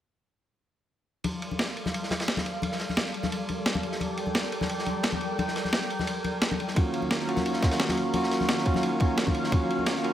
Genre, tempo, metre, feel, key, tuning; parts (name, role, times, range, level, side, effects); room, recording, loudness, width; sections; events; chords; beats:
liquid drum and bass; 174 BPM; 4/4; straight; G minor; A4 = 436 Hz
lush unison pad; sustained chords; 1.2-10.1 s; Eb3 to G5; -32 LUFS; equal; chorus
crunchy breakbeat drum kit; drums; 1.2-10.1 s; ride cymbal, snare drum; -34 LUFS; equal; high-pass filter on cymbals, high-pass filter on snare, high-pass filter on room
congas; percussion; 1.2-9.9 s; -33 LUFS; left 3 dB
electronic snare drum; drums; 1.6-9.9 s; -30 LUFS; equal
bell-like tine electric piano; accompaniment; 6.7-10.1 s; Bb3 to Gb4; -28 LUFS; right 1 dB; tape echo
electronic kick drum; drums; 6.8-9.6 s; -24 LUFS; equal; overdrive
light reverb, small room reverb; -25 LUFS; side -11 dB against mid
1.2-10.1 A section
filter sweep on analog synth pad 1.2-10.1
1.2 Gm7; 6.8 Ebm7
| 1.25 1.59 1.94 2.28 | 2.63 2.97 3.31 3.66 | 4.00 4.35 4.70 5.04 | 5.38 5.73 6.07 6.42 | 6.76 7.11 7.45 7.80 | 8.14 8.49 8.83 9.18 | 9.52 9.87